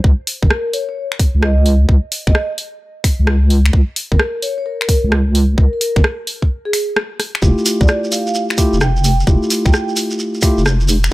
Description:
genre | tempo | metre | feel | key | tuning
UK garage, two-step garage | 130 BPM | 4/4 | swing 66% on 16ths | unclear | A4 = 440 Hz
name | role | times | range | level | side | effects
deep soft wobble bass | bass | 0.0-11.1 s | F1 to Db2 | -13 LUFS | equal | chorus
electronic kick drum | drums | 0.0-10.5 s | none | -13 LUFS | equal | none
garage drum kit | drums | 0.3-11.1 s | finger snaps, hi-hat, rim click | -20 LUFS | equal | none
vibraphone with soft mallets | melody | 0.4-9.8 s | Ab4 to G5 | -22 LUFS | equal | dub echo
mellow tine electric piano | stabs | 7.4-10.6 s | A3 to G4 | -19 LUFS | equal | dub echo
shekere | percussion | 7.4-11.1 s | none | -23 LUFS | right 2 dB | none
room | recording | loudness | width
little or no reverb | none | -13 LUFS | side -18 dB against mid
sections
0.0-11.1 A section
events
break 6.5-7.4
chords
0.0 Db5; 7.4 Fmaj9

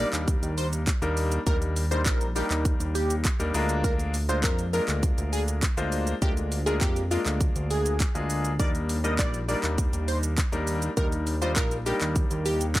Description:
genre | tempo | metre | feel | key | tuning
dance-pop | 101 BPM | 4/4 | straight | Eb major | A4 = 440 Hz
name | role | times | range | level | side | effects
plucky unison lead | melody | 0.0-12.7 s | F4 to Eb5 | -31 LUFS | right 1 dB | none
clear grand piano | accompaniment | 0.0-12.7 s | G3 to C5 | -30 LUFS | left 2 dB | sidechain pumping
chorused synth bass | bass | 0.0-12.8 s | Bb1 to F2 | -28 LUFS | equal | sidechain pumping
house drum kit | drums | 0.1-12.8 s | handclaps, hi-hat, kick drum, shaker | -27 LUFS | equal | none
room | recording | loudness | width
little or no reverb | dry, gritty hardware recording, transformer saturation | -24 LUFS | side -16 dB against mid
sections
0.0-12.8 A section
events
none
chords
0.0 Ebmaj7; 3.5 Bb7/D; 8.6 Ebmaj7

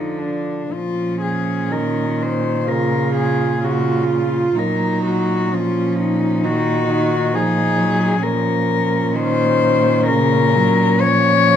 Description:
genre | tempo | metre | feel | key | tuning
classical, lyrical piece for cello ensemble | 55-67 BPM | 4/4 | rubato | Bb minor | A4 = 440 Hz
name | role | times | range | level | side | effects
dark cello | melody | 0.0-11.6 s | D4 to Db5 | -19 LUFS | left 6 dB | none
warm cello | second line | 0.0-11.6 s | F3 to F4 | -23 LUFS | right 8 dB | none
warm cello | accompaniment | 0.0-11.6 s | Db3 to Gb3 | -21 LUFS | left 1 dB | none
warm cello | bass | 0.7-11.6 s | Bb2 | -22 LUFS | right 2 dB | none
room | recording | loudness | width
moderate recital hall reverb, RT60 1.4 s | minimal, uncompressed stereo recording | -15 LUFS | side -9 dB against mid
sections
0.7-11.6 A section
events
none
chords
0.0 Bb/D (rootless); 0.7 Bbm; 4.6 Ebm/Bb

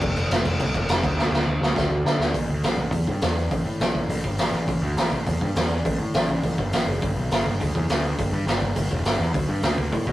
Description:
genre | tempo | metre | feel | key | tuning
punk rock | 206 BPM | 4/4 | straight | unclear | A4 = 441 Hz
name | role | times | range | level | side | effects
fuzz picked electric bass | bass | 0.0-10.1 s | E1 to D3 | -25 LUFS | equal | overdrive
raw garage drum kit | drums | 0.0-10.1 s | crash cymbal, hi-hat, kick drum, snare drum | -23 LUFS | equal | none
room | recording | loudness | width
little or no reverb | rough rehearsal-room recording, warm saturation | -21 LUFS | side -15 dB against mid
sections
0.0-2.3 A section; 2.3-10.1 B section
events
drum fill 1.2-2.3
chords
none

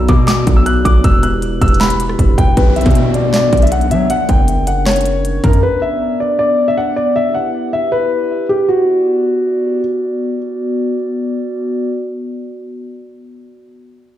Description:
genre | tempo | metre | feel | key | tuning
hip hop, trap | 157 BPM | 4/4 | half-time | B harmonic minor | A4 = 440 Hz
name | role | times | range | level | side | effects
dark concert grand piano | melody | 0.0-9.8 s | F#4 to F#6 | -16 LUFS | left 1 dB | low-pass filter, ping-pong delay
glass harmonica | sustained chords | 0.0-11.9 s | B3 to D5 | -20 LUFS | equal | none
distorted 808-style bass | bass | 0.0-5.6 s | E1 to F#3 | -15 LUFS | equal | distortion
trap drum kit | drums | 0.1-5.6 s | handclaps, hi-hat, kick drum, rim click, snare drum | -13 LUFS | equal | none
downlifter | sound effects | 2.6-5.6 s | none | -23 LUFS | equal | none
room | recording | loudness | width
light reverb, digital ambience | played on a big sound system in a bare room, large studio reverb | -12 LUFS | side -12 dB against mid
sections
0.0-2.6 A section; 2.6-8.7 B section; 8.7-11.7 C section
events
none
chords
0.0 Bm; 1.0 Em; 2.6 Bm; 4.1 F#; 5.6 Bm; 7.2 Em; 8.7 Bm

